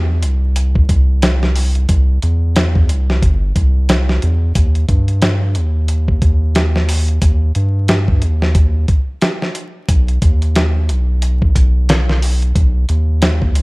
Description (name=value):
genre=trip hop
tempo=90 BPM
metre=4/4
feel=swing 59% on 16ths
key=unclear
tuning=A4 = 440 Hz
part: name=soft dub sub bass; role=bass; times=0.0-13.6 s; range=G1 to G2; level=-14 LUFS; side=equal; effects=none
part: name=dusty soul sampler-style drum kit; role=drums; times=0.2-13.6 s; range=hi-hat, kick drum, snare drum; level=-15 LUFS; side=equal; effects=none
room=little or no reverb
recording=vinyl crackle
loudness=-12 LUFS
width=side -26 dB against mid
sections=0.0-13.6 A section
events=none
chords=none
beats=0.55 1.22 | 1.88 2.55 3.22 3.88 | 4.55 5.22 5.88 6.55 | 7.22 7.88 8.55 9.22 | 9.88 10.55 11.22 11.88 | 12.55 13.22